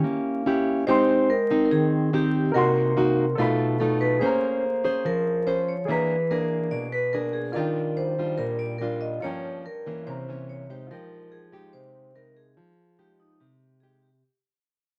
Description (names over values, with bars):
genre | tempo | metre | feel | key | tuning
bossa nova | 144 BPM | 4/4 | straight | F minor | A4 = 440 Hz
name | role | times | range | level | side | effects
nylon-string guitar | accompaniment | 0.0-14.2 s | G2 to C5 | -27 LUFS | equal | none
vibraphone with medium hard mallets | second line | 0.9-14.2 s | Eb4 to Eb5 | -29 LUFS | equal | none
clear grand piano | accompaniment | 0.9-14.3 s | Db4 to C6 | -34 LUFS | equal | none
room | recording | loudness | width
moderate studio reverb, RT60 0.5 s | vinyl crackle | -24 LUFS | mono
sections
0.0-14.2 A section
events
fade-out 0.9-14.2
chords
0.0 Eb7b9 (rootless); 0.9 Abmaj7; 2.5 Cm7b5; 3.4 B7#11; 4.2 Bbm9; 5.9 E7#11; 7.6 Ebmaj9; 9.2 Gm7b5; 10.1 C7b9; 10.9 Fm9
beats
0.04 0.46 | 0.87 1.29 1.71 2.13 | 2.54 2.96 3.38 3.80 | 4.22 4.63 5.05 5.47 | 5.89 6.31 6.72 7.14 | 7.56 7.98 8.40 8.81 | 9.23 9.65 10.07 10.48 | 10.90 11.32 11.74 12.15 | 12.57 12.99 13.40 13.82